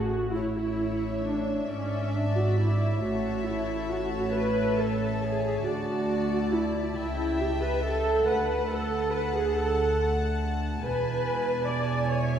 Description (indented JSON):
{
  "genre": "classical, slow romantic movement for string orchestra",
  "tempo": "46 BPM (dotted quarters)",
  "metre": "6/8",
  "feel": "uneven beats, rubato",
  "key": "A major",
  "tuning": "A4 = 438 Hz",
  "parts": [
    { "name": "dark symphonic viola section", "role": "accompaniment", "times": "0.0-12.4 s", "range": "C#4 to D5", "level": "-28 LUFS", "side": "right 1 dB", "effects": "none" },
    { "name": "warm studio double bass section", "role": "bass", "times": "0.0-12.4 s", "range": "E1 to D2", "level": "-32 LUFS", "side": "right 1 dB", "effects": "none" },
    { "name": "warm symphonic cello section", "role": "bass", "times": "0.0-12.4 s", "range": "C#2 to A2", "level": "-32 LUFS", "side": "right 2 dB", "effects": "none" },
    { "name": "dark chamber violin section", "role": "melody", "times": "0.3-12.4 s", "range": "E5 to A5", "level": "-41 LUFS", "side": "left 5 dB", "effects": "none" },
    { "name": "warm symphonic violin section", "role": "second line", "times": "0.3-12.4 s", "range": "C#5 to G#5", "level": "-34 LUFS", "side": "left 2 dB", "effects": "none" }
  ],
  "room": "wet scoring stage reverb, RT60 2.0 s",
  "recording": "heard from further back in the room",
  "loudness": "-25 LUFS",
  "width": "side -8 dB against mid",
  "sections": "0.3-12.4 A section",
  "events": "none",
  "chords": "0.3 A; 1.7 E7/G#; 3.0 A; 5.7 D; 7.0 A7/C#; 8.3 D; 10.8 E"
}